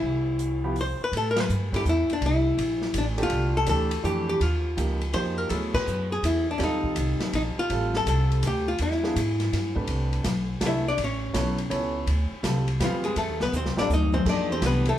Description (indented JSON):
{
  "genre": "jazz, small-group swing and bop",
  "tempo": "164 BPM",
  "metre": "3/4",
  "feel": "swing 66% on 8ths",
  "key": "A minor, C major from 9.9 s",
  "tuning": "A4 = 440 Hz",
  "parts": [
    { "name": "archtop guitar, miked and amplified", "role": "melody", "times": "0.0-15.0 s", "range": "F3 to E5", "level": "-27 LUFS", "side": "left 2 dB", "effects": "none" },
    { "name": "upright bass", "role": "bass", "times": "0.0-15.0 s", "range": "A1 to A2", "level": "-27 LUFS", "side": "equal", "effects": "none" },
    { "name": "open jazz drum kit", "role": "drums", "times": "0.4-14.9 s", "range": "crash cymbal, hi-hat, kick drum, ride cymbal, snare drum, toms", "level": "-32 LUFS", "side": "left 1 dB", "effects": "none" },
    { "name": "warm concert grand piano", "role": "accompaniment", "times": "0.6-15.0 s", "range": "C3 to C#5", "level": "-32 LUFS", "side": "right 2 dB", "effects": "none" }
  ],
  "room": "light reverb",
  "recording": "band playing live in one room",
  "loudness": "-23 LUFS",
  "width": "side -12 dB against mid",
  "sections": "0.0-1.1 A section; 1.1-9.9 B section; 9.9-15.0 C section",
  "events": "band accent 1.3, 5.7; hollow-body jazz guitar solo 9.9-15.0; drum fill 13.5-14.3",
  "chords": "0.0 C; 1.1 A7sus2; 2.2 C13; 3.3 F69; 4.4 D#9; 5.5 Dadd9; 6.6 D#add9; 7.7 F; 8.8 E7b9; 9.5 G; 9.9 Cmaj7; 11.0 A; 12.1 Dm7; 13.2 F13; 14.3 Em7"
}